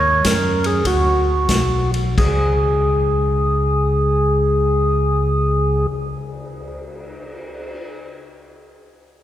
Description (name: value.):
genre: soul jazz organ trio.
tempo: 84-105 BPM.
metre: 4/4.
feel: swing 66% on 8ths.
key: unclear.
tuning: A4 = 439 Hz.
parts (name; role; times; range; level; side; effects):
percussive tonewheel organ; melody; 0.0-5.9 s; F#4 to Db5; -18 LUFS; equal; slow rotary speaker.
tonewheel organ; bass; 0.0-5.9 s; Cb2 to Gb2; -19 LUFS; equal; overdrive, chorus vibrato, slow rotary speaker.
vintage drum kit; drums; 0.2-7.8 s; crash cymbal, cymbal swell, hi-hat, kick drum, ride cymbal, snare drum; -24 LUFS; left 1 dB; none.
room: wet church reverb, RT60 3.6 s.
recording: recorded in a church or concert hall.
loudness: -15 LUFS.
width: side -12 dB against mid.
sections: 0.0-2.2 A section; 2.2-7.9 B section.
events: slowing down 0.0-2.2.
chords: 0.0 Ebm7; 0.8 D; 2.2 Db5.